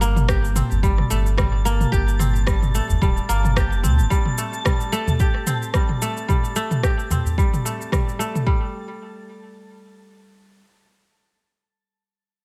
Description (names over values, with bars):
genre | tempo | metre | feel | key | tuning
organic downtempo | 110 BPM | 4/4 | swing 55% on 16ths | G minor | A4 = 441 Hz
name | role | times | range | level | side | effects
kora | arpeggios | 0.0-10.6 s | G3 to G4 | -28 LUFS | equal | low-pass filter, delay
warm sub bass | bass | 0.0-4.1 s | D1 to D2 | -22 LUFS | equal | tube saturation
organic electronic drum kit | drums | 0.0-8.4 s | cabasa, rim click, toms | -27 LUFS | equal | overdrive
twinkling granular texture | texture | 0.6-8.5 s | A5 | -37 LUFS | equal | built-in reverb
electronic kick drum | drums | 0.3-8.6 s | none | -23 LUFS | equal | none
udu | percussion | 0.7-7.3 s | none | -27 LUFS | equal | none
room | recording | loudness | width
light reverb | none | -21 LUFS | mono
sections
0.0-8.5 A section; 8.5-12.4 B section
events
none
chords
0.0 Gm; 4.1 Gsus24; 8.5 N.C.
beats
0.28 0.83 1.38 | 1.92 2.46 3.01 3.56 | 4.10 4.65 5.19 5.74 | 6.28 6.83 7.38 7.92 | 8.46 9.01 9.56 10.10